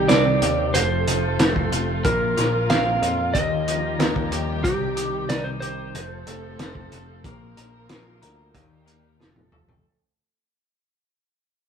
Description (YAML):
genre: psychedelic rock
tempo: 92 BPM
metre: 4/4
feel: straight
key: unclear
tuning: A4 = 441 Hz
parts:
  - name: electric slide guitar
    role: melody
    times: 0.0-9.1 s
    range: G4 to F5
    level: -24 LUFS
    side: right 2 dB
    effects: none
  - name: dark chamber string section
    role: sustained chords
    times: 0.0-9.8 s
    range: Eb3 to Bb4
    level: -31 LUFS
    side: right 3 dB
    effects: none
  - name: twelve-string electric guitar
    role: riff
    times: 0.0-9.8 s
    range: F2 to Bb4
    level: -28 LUFS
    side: left 5 dB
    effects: harmonic tremolo
  - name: picked electric bass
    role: bass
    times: 0.0-9.8 s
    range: F1 to F2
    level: -28 LUFS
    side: right 1 dB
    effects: none
  - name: cloth-damped thuddy drum kit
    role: drums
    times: 0.1-9.8 s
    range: hi-hat, kick drum, snare drum, toms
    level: -23 LUFS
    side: equal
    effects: none
room: moderate studio reverb, RT60 0.5 s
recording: band playing live in one room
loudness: -19 LUFS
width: side -7 dB against mid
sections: 0.0-9.8 A section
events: fade-out 0.0-9.8; drum fill 9.2-9.8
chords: 0.0 Cm; 0.8 F; 2.1 Bbsus2; 3.4 Ebadd9; 4.7 Cm; 6.0 F; 7.2 Bbsus2; 8.5 Ebadd9; 9.2 F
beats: 0.10 0.75 1.40 | 2.05 2.70 3.35 4.00 | 4.65 5.30 5.95 6.60 | 7.25 7.90 8.55 9.20